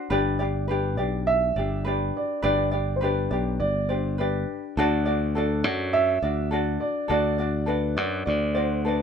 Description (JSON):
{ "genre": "acoustic pop", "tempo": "103 BPM", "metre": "4/4", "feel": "swing 60% on 16ths", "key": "G major", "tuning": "A4 = 440 Hz", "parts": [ { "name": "ukulele", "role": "accompaniment", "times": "0.0-9.0 s", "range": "D4 to D5", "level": "-27 LUFS", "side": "left 2 dB", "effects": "none" }, { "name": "modern bright fingered electric bass", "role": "bass", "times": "0.1-9.0 s", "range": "G1 to F#2", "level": "-26 LUFS", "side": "equal", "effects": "none" }, { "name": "dark upright piano", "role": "melody", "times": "0.7-9.0 s", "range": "A4 to E5", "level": "-27 LUFS", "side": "right 2 dB", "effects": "none" } ], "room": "moderate small room ambience, RT60 0.5 s", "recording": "minimal, uncompressed stereo recording", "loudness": "-22 LUFS", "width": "side -7 dB against mid", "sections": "0.1-9.0 A section", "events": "none", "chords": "0.1 G; 4.8 D" }